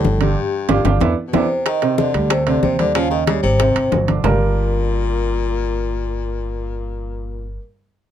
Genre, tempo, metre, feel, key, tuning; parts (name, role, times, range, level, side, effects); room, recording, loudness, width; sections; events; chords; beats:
Afro-Cuban jazz; 186 BPM; 4/4; straight; G minor; A4 = 441 Hz
vibraphone with soft mallets; melody; 0.0-7.6 s; G4 to F5; -23 LUFS; equal
edgy baritone saxophone; second line; 0.0-7.6 s; G2 to F3; -26 LUFS; left 8 dB
clear upright piano; accompaniment; 0.0-7.6 s; C3 to Bb4; -21 LUFS; right 6 dB
upright bass; bass; 0.0-7.6 s; G1 to E2; -21 LUFS; equal
bongos; percussion; 0.0-4.3 s; -24 LUFS; left 9 dB
congas; percussion; 0.0-4.3 s; -23 LUFS; left 3 dB
timbales; percussion; 0.2-4.3 s; -24 LUFS; right 7 dB
light reverb; dark, warm production; -16 LUFS; side -10 dB against mid
0.0-1.7 A section; 1.7-4.2 B section; 4.2-6.8 C section
band accent 0.4-1.7; drum fill 0.7-1.7
0.0 Gsus2; 1.0 E5; 1.7 Cmadd9; 2.3 D7sus4; 3.0 Eb7; 3.6 Ab7; 4.2 Gm7
0.05 | 0.37 0.69 1.01 1.34 | 1.66 1.98 2.31 2.63 | 2.95 3.27 3.60 3.92 | 4.24 4.56 4.89 5.21 | 5.53 5.86 6.18 6.50